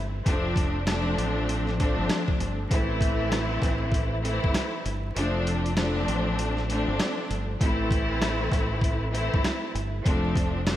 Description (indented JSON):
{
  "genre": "hip hop, boom-bap hip-hop",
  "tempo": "98 BPM",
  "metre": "4/4",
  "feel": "swing 61% on 16ths",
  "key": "A minor",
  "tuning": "A4 = 439 Hz",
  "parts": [
    { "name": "deep dub fingered electric bass", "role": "bass", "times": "0.0-10.8 s", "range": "F1 to A1", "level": "-30 LUFS", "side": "equal", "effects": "none" },
    { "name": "clear studio string section", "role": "accompaniment", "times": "0.3-10.8 s", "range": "E3 to E4", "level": "-27 LUFS", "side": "equal", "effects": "high-pass filter, low-pass filter" },
    { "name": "boom bap sampler-style drum kit", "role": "drums", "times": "0.3-10.8 s", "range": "hi-hat, kick drum, rim click, snare drum", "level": "-28 LUFS", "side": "equal", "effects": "none" }
  ],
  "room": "moderate church reverb, RT60 2.8 s",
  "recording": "dreamy mix soaked in reverb, vinyl crackle",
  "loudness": "-24 LUFS",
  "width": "side -13 dB against mid",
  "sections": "0.0-10.8 A section",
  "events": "kick muted 5.2-7.6",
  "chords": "0.3 F6; 2.7 Am; 5.2 F6; 7.6 Am; 10.1 F6",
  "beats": "| 0.26 0.87 1.48 2.10 | 2.71 3.32 3.93 4.54 | 5.16 5.77 6.38 6.99 | 7.61 8.22 8.83 9.44 | 10.05 10.67"
}